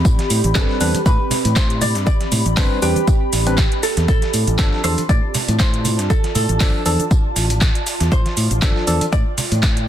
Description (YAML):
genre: deep house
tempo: 119 BPM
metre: 4/4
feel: swing 55% on 16ths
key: unclear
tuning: A4 = 441 Hz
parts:
  - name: breakbeat sampler-style drum kit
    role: drums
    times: 0.0-9.8 s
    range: hi-hat, snare drum, tambourine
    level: -30 LUFS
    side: equal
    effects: high-pass filter on perc, high-pass filter on snare, high-pass filter on hats, high-pass filter on room
  - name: ethereal airy pad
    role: texture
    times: 0.0-9.9 s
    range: C4 to B5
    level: -26 LUFS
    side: equal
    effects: ensemble chorus, built-in reverb, sidechain pumping
  - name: fingered electric bass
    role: bass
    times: 0.1-9.9 s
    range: A1 to A2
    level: -19 LUFS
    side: equal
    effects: sidechain pumping
  - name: electronic kick drum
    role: drums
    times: 0.1-9.7 s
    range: none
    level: -16 LUFS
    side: equal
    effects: none
  - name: house drum kit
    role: drums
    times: 0.1-9.9 s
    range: handclaps, hi-hat, shaker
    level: -23 LUFS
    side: right 1 dB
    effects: none
  - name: congas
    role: percussion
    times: 0.2-9.6 s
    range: none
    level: -27 LUFS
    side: right 3 dB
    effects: none
  - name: hollow-body jazz guitar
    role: melody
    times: 0.6-9.8 s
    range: G4 to D5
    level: -25 LUFS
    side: right 3 dB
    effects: tape echo
  - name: percussive organ stab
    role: stabs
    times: 0.6-9.1 s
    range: F3 to B4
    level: -23 LUFS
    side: equal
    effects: chorus, sidechain pumping, tape echo
room: little or no reverb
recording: dense, heavily limited modern master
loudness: -15 LUFS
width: side -11 dB against mid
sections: 0.0-9.9 A section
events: none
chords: 0.0 Am11; 4.1 Dm